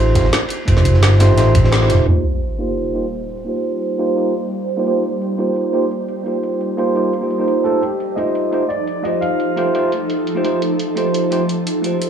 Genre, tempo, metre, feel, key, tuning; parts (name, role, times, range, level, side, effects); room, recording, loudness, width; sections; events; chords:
liquid drum and bass; 172 BPM; 4/4; straight; Eb lydian; A4 = 439 Hz
bell-like tine electric piano; accompaniment; 0.0-12.1 s; A3 to C5; -18 LUFS; right 2 dB; low-pass filter, tape echo
smooth synth bass; bass; 0.0-2.1 s; Eb1 to A1; -13 LUFS; equal; tube saturation
crunchy breakbeat drum kit; drums; 0.2-2.0 s; ride cymbal, snare drum; -27 LUFS; equal; high-pass filter on cymbals, high-pass filter on snare, high-pass filter on room
drum and bass drum kit; drums; 0.2-12.1 s; crash cymbal, hi-hat, snare drum; -22 LUFS; equal; overdrive
electronic kick drum; drums; 0.2-1.6 s; -16 LUFS; equal
ethereal airy pad; sustained chords; 2.9-12.1 s; F3 to C5; -22 LUFS; right 1 dB; ensemble chorus, built-in reverb, phaser
sub drop; sound effects; 2.1-3.5 s; -20 LUFS; equal
dark baby grand piano; melody; 7.6-9.9 s; G4 to F5; -23 LUFS; left 1 dB; tape echo
moderate plate reverb, RT60 1.6 s; low-pass filter, small room reverb; -15 LUFS; side -8 dB against mid
0.0-2.1 A section; 2.1-12.1 B section
band accent 1.7; impact 2.1-3.5; filter sweep on tine electric piano 2.1-12.1; filter sweep 2.1-12.1
0.0 F7; 2.1 Eb6; 7.7 F7